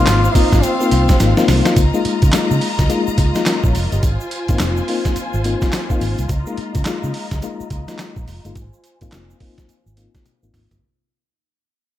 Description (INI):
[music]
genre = R&B, new jack swing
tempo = 106 BPM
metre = 4/4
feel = swing 61% on 16ths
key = unclear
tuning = A4 = 440 Hz
[part]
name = clear trombone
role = melody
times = 0.0-1.5 s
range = C4 to F4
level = -21 LUFS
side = equal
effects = tape echo
[part]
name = FM electric piano with tremolo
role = accompaniment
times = 0.0-10.8 s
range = Ab3 to Eb5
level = -21 LUFS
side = left 5 dB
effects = low-pass filter
[part]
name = warm symphonic string section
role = sustained chords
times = 0.0-10.8 s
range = F4 to Bb5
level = -26 LUFS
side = left 1 dB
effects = low-pass filter
[part]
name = vintage muted fingered electric bass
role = bass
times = 0.0-10.8 s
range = F1 to Db3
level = -18 LUFS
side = equal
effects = none
[part]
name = boom bap sampler-style drum kit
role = drums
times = 0.1-10.8 s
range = handclaps, hi-hat, kick drum, snare drum, tambourine, toms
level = -18 LUFS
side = equal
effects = none
[part]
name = tube shaker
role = percussion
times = 0.1-10.8 s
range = none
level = -37 LUFS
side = right 8 dB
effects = none
[sound]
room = digital ambience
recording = none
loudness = -14 LUFS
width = side -12 dB against mid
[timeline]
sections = 0.0-1.8 A section; 1.8-10.8 B section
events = drum fill 1.2-1.8, 10.3-10.8; fade-out 1.8-10.8; filter sweep 1.8-10.8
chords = 0.0 Ab6; 1.8 Db69; 4.0 Ab6; 6.3 Db69; 8.6 Ab6